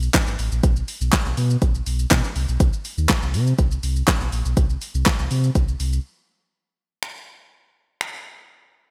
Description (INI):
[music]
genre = dance-pop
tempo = 122 BPM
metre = 4/4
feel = straight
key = unclear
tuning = A4 = 438 Hz
[part]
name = sub bass with octave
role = bass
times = 0.0-6.0 s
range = G#1 to B#2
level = -24 LUFS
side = equal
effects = sidechain pumping
[part]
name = deep house drum kit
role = drums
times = 0.0-8.1 s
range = finger snaps, handclaps, hi-hat, kick drum, shaker, snare drum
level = -23 LUFS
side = equal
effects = none
[sound]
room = light reverb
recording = none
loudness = -22 LUFS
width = mono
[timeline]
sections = 0.0-6.5 A section; 6.5-8.9 B section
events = drop 0.0-6.5; break 6.0-6.5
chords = none